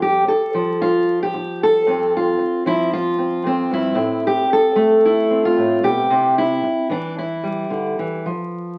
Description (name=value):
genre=folk, solo fingerstyle acoustic guitar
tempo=112 BPM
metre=4/4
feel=rubato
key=unclear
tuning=A4 = 440 Hz
part: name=fingerpicked steel-string acoustic guitar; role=solo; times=0.0-8.8 s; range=F2 to A4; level=-19 LUFS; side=equal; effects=none
room=wet studio reverb, RT60 0.6 s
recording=very old 78 rpm record, vinyl crackle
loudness=-19 LUFS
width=mono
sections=0.0-8.8 A section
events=none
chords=0.0 F; 4.0 Am; 6.1 C; 8.3 N.C.